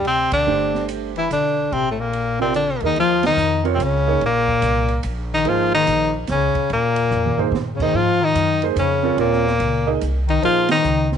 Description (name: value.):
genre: modal jazz.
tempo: 145 BPM.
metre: 3/4.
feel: swing 64% on 8ths.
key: unclear.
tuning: A4 = 441 Hz.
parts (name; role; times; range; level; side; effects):
breathy tenor saxophone; melody; 0.0-11.1 s; A3 to F4; -19 LUFS; equal; none.
breathy bass clarinet; second line; 0.0-11.1 s; A2 to F3; -23 LUFS; left 10 dB; none.
upright bass; bass; 0.0-11.2 s; G1 to Bb2; -25 LUFS; equal; none.
open jazz drum kit; drums; 0.0-11.2 s; crash cymbal, hi-hat, kick drum, ride cymbal, snare drum, toms; -31 LUFS; right 5 dB; none.
warm concert grand piano; accompaniment; 0.5-10.7 s; A3 to Eb5; -24 LUFS; right 13 dB; none.
room: light reverb, small room reverb.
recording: 1960s-style stereo with parts hard left and right, nothing above 10.8 kHz.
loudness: -16 LUFS.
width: side -8 dB against mid.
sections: 0.0-3.0 A section; 3.0-11.2 B section.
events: band accent 0.3, 3.2, 10.6; drum fill 7.1-7.5.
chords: 0.0 Gsus4; 1.7 Bbadd9; 3.0 Eb9sus4.